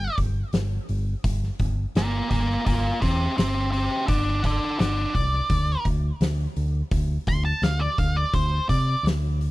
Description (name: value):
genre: blues rock power trio and southern rock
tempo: 85 BPM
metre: 4/4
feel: straight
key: unclear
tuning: A4 = 441 Hz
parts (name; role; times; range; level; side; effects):
- octave-fuzz lead guitar; melody; 0.0-9.0 s; F4 to C6; -26 LUFS; equal; distortion
- picked electric bass; bass; 0.0-9.5 s; G1 to C3; -25 LUFS; equal; none
- oversized low-tuned drum kit; drums; 0.2-9.5 s; hi-hat, kick drum, snare drum; -27 LUFS; equal; none
room: little or no reverb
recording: dry, close 1970s-style studio recording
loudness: -21 LUFS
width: side -18 dB against mid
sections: 0.0-9.5 A section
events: lead electric guitar solo 0.0-9.5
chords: 0.0 G5; 5.5 N.C.